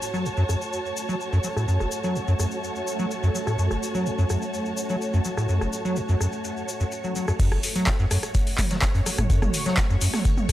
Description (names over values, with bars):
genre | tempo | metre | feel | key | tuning
acid house | 126 BPM | 4/4 | straight | F# minor | A4 = 439 Hz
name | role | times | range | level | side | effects
string machine, full ensemble | sustained chords | 0.0-10.5 s | A3 to C#5 | -31 LUFS | equal | phaser, ensemble chorus, sidechain pumping
electro analog drum machine | drums | 0.0-10.5 s | crash cymbal, handclaps, hi-hat, rim click, toms | -28 LUFS | equal | low-pass filter on hats, low-pass filter on snare, low-pass filter on toms, low-pass filter on cymbals, low-pass filter on room
tube shaker | percussion | 0.0-10.5 s | none | -36 LUFS | left 3 dB | none
warm studio string section | texture | 0.0-7.4 s | F#4 to A5 | -32 LUFS | right 1 dB | sidechain pumping
acid bass, square | riff | 0.1-10.1 s | F#1 to F#3 | -25 LUFS | equal | wide subtle chorus, cassette tape, sidechain pumping, digital delay
electronic kick drum | drums | 7.4-10.5 s | none | -23 LUFS | equal | overdrive
raw garage drum kit | drums | 7.4-10.5 s | hi-hat, snare drum | -39 LUFS | equal | none
room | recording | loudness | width
light reverb, small room ambience | none | -22 LUFS | side -14 dB against mid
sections
0.0-7.4 A section; 7.4-10.5 B section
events
filter sweep on string machine 0.0-7.4; drop 7.4-10.5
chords
0.0 F#m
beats
0.25 0.73 1.21 | 1.68 2.16 2.63 3.11 | 3.59 4.06 4.54 5.01 | 5.49 5.97 6.44 6.92 | 7.39 7.87 8.35 8.82 | 9.30 9.78 10.25